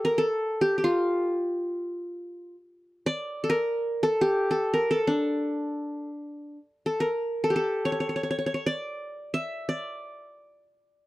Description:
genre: arabic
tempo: free time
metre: none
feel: none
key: D maqam nahawand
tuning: A4 = 440 Hz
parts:
  - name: qanun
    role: solo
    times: 0.0-11.1 s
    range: D4 to E5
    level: -25 LUFS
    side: equal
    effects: none
room: little or no reverb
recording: dry, close 1970s-style studio recording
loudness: -25 LUFS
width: side -18 dB against mid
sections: 0.0-6.5 A section; 6.5-11.1 A section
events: none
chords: none

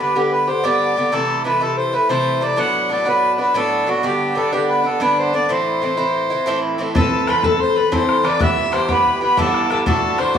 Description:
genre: celtic folk, Celtic slip jig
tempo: 124 BPM (dotted quarters)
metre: 9/8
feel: straight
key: A dorian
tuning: A4 = 440 Hz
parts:
  - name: accordion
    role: melody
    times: 0.0-10.4 s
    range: F#4 to F#5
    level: -18 LUFS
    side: equal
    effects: none
  - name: Irish bouzouki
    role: accompaniment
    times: 0.0-10.4 s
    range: G2 to B4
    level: -19 LUFS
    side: right 1 dB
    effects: none
  - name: bright reedy mid whistle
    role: second line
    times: 7.0-10.4 s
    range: A5 to F#6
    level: -23 LUFS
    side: left 7 dB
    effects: none
  - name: bodhran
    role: percussion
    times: 7.0-10.4 s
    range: none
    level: -22 LUFS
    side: left 2 dB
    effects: none
room: moderate recital hall reverb, RT60 1.4 s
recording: small room ambience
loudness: -15 LUFS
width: side -8 dB against mid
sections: 0.0-7.0 A section; 7.0-10.4 A section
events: none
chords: 0.0 G; 1.1 Am; 2.6 Bm7; 4.0 G; 5.5 Am; 7.0 Amadd9; 8.4 Em; 9.9 Dadd9

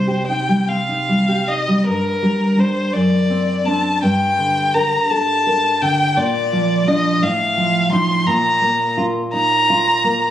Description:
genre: romantic duo for violin and classical guitar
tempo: 56 BPM (dotted quarters)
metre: 6/8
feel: uneven beats, rubato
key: G minor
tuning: A4 = 440 Hz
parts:
  - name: clear violin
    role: melody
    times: 0.0-10.3 s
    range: Bb4 to C6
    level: -17 LUFS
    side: left 1 dB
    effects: none
  - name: nylon-string guitar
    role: accompaniment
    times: 0.0-10.3 s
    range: F#2 to Bb4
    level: -18 LUFS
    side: equal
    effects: none
room: moderate recital hall reverb, RT60 1.3 s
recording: recorded on a phone in the room, studio ambience, compression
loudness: -15 LUFS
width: side -11 dB against mid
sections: 0.0-1.9 A section; 1.9-10.3 B section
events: none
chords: 0.0 Cm; 1.9 Gm; 2.9 D7/F#; 4.0 Gm; 6.2 Bb; 7.2 F7/A; 8.3 Bb5

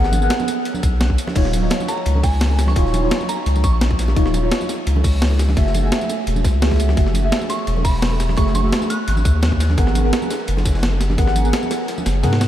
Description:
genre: liquid drum and bass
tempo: 171 BPM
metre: 4/4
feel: straight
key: Eb minor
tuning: A4 = 440 Hz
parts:
  - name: deep mellow chord stab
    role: accompaniment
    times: 0.0-12.5 s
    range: Gb3 to Gb5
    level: -23 LUFS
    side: equal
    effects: chorus, phaser, ping-pong delay
  - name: saturated sub bass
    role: bass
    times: 0.0-12.5 s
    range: Eb1 to Ab2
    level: -18 LUFS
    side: equal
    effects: none
  - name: breakbeat sampler-style drum kit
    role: drums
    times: 0.0-12.5 s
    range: crash cymbal, hi-hat, snare drum, tambourine, toms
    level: -24 LUFS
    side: equal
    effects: none
  - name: crunchy breakbeat drum kit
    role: drums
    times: 0.0-12.5 s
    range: hi-hat, ride cymbal, snare drum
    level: -34 LUFS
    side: equal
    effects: high-pass filter on cymbals, high-pass filter on hats, high-pass filter on snare, high-pass filter on room
  - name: congas and bongos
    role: percussion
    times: 0.1-12.3 s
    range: none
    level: -29 LUFS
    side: right 2 dB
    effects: none
  - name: electronic kick drum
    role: drums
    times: 0.8-11.3 s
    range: none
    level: -18 LUFS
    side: equal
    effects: none
  - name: soft synth bell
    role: melody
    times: 1.9-3.8, 7.5-9.4 s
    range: Ab5 to Gb6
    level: -30 LUFS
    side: right 2 dB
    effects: chorus, analog delay
room: light reverb, studio reverb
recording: none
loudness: -16 LUFS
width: side -12 dB against mid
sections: 0.0-12.5 A section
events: kick drops out 11.9-12.5; drum fill 12.1-12.5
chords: 0.0 Abm9; 1.4 Ebm9; 5.6 Gbm9; 8.9 Abm9

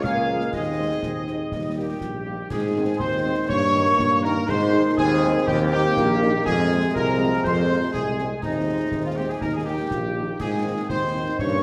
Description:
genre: military-style march for wind band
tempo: 122 BPM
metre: 2/4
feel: straight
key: Ab major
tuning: A4 = 439 Hz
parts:
  - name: dark trumpet section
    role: melody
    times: 0.0-11.6 s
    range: Eb4 to F5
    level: -31 LUFS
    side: equal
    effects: none
  - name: mellow flute section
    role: second line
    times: 0.0-11.6 s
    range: Ab4 to Db6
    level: -31 LUFS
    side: equal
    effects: none
  - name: warm woodwind section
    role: second line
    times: 0.0-11.6 s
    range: Eb4 to F5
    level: -33 LUFS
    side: equal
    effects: none
  - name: dark trombone section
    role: sustained chords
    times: 0.0-11.6 s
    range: C3 to C4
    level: -33 LUFS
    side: equal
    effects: none
  - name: warm tuba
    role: bass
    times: 0.0-11.6 s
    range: Bb1 to Ab2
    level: -27 LUFS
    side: equal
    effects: none
  - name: concert snare drum, concert bass drum and clash cymbals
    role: drums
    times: 0.0-11.6 s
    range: none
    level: -36 LUFS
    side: equal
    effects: none
  - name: mellow French horn section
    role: accompaniment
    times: 0.3-11.2 s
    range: Eb3 to Eb4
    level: -34 LUFS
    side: equal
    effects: none
  - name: mellow euphonium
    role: second line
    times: 3.0-11.6 s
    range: F3 to F4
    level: -32 LUFS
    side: equal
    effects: none
room: wet recital hall reverb, RT60 1.5 s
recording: none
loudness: -23 LUFS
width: mono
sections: 0.0-2.5 A section; 2.5-11.6 B section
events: none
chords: 0.0 Bbm7/Db; 0.5 Ab/Eb; 1.5 Eb; 2.5 Ab; 3.5 Eb7/G; 4.5 Ab; 5.5 Eb; 6.5 Fm; 8.4 Ab/Eb; 9.4 Eb; 10.4 Ab

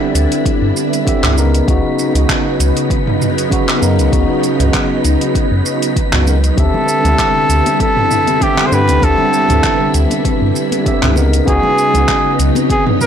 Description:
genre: sunset chillout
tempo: 98 BPM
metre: 4/4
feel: swing 54% on 16ths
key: unclear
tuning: A4 = 440 Hz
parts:
  - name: tine electric piano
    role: accompaniment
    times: 0.0-13.1 s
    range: C#3 to G5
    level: -18 LUFS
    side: moving between left 4 dB and right 2 dB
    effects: auto-pan, tape echo
  - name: soft string machine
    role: sustained chords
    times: 0.0-13.1 s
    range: C3 to E4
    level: -20 LUFS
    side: equal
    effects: phaser, ensemble chorus
  - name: wind-like tuned noise texture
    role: texture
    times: 0.0-13.1 s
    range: B3 to B6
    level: -24 LUFS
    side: right 4 dB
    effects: built-in reverb
  - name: round analog bass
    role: bass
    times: 0.1-12.5 s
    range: C#2 to G2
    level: -14 LUFS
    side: equal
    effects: none
  - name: deep house drum kit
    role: drums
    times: 0.2-13.1 s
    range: handclaps, hi-hat, shaker, toms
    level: -20 LUFS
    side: equal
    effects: overdrive
  - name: electronic kick drum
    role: drums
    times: 0.5-12.8 s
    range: none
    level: -18 LUFS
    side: equal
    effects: overdrive
  - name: clear flugelhorn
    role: melody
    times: 6.6-13.1 s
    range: G4 to C5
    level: -15 LUFS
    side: equal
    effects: vintage 12-bit sampler grit, tape echo
  - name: congas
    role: percussion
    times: 6.7-12.7 s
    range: none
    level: -24 LUFS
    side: left 4 dB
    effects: none
room: light reverb, digital ambience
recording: blown-out, overdriven recording, overdrive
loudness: -11 LUFS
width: side -8 dB against mid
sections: 0.0-13.1 A section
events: none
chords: 0.0 D9sus4; 1.4 C#9sus4; 6.6 D9sus4; 11.2 C#9sus4

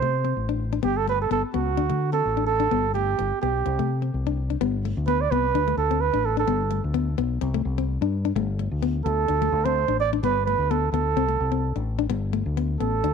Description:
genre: highlife guitar band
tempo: 128 BPM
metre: 4/4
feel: swing 54% on 16ths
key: G major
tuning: A4 = 440 Hz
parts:
  - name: trumpet with bucket mute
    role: melody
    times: 0.0-13.1 s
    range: F#4 to D5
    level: -24 LUFS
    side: right 9 dB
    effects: none
  - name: nylon-string guitar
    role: accompaniment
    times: 0.0-13.1 s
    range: A3 to D4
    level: -28 LUFS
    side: left 14 dB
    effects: none
  - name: fingered electric bass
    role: bass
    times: 0.0-13.1 s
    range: G1 to D3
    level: -26 LUFS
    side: left 2 dB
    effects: none
room: light reverb, studio ambience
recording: 1960s-style stereo with parts hard left and right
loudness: -22 LUFS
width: side -6 dB against mid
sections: 0.0-4.6 A section; 4.6-13.1 B section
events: none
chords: 0.0 Amadd11; 0.8 Gadd9; 1.8 D5; 2.7 Gadd9; 3.7 C5; 4.6 Gadd9; 5.5 D5; 6.5 Gadd9; 7.4 C5; 8.3 Gadd9; 9.3 D5; 10.2 Gadd9; 11.2 Amadd11; 12.1 Gadd9

